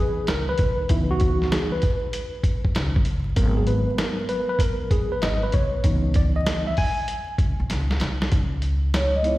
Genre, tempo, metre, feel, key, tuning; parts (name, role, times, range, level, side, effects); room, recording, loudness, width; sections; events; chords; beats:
hip hop, jazz-hop; 97 BPM; 4/4; swing 66% on 16ths; C# dorian; A4 = 440 Hz
tine electric piano; accompaniment; 0.0-9.4 s; E3 to G#5; -25 LUFS; equal; overdrive, fast stereo tremolo, slapback echo
upright bass; bass; 0.3-9.4 s; G1 to C#2; -24 LUFS; equal
lo-fi sampler-style drum kit; drums; 0.3-9.4 s; hi-hat, kick drum, snare drum; -23 LUFS; equal
vibraphone with soft mallets; melody; 9.0-9.4 s; C#5 to D#5; -22 LUFS; right 1 dB
light reverb; live gig heard through the venue's PA, recital hall reverb, vinyl crackle; -20 LUFS; side -17 dB against mid
0.0-8.3 A section; 8.3-9.4 B section
tine electric piano solo 0.0-8.3; drum fill 7.7-8.3
0.0 C#m9; 3.4 G#m7; 5.8 C#m9; 8.3 C#7sus2
0.28 | 0.89 1.51 2.13 2.75 | 3.37 3.99 4.61 5.22 | 5.84 6.46 7.08 7.70 | 8.32 8.94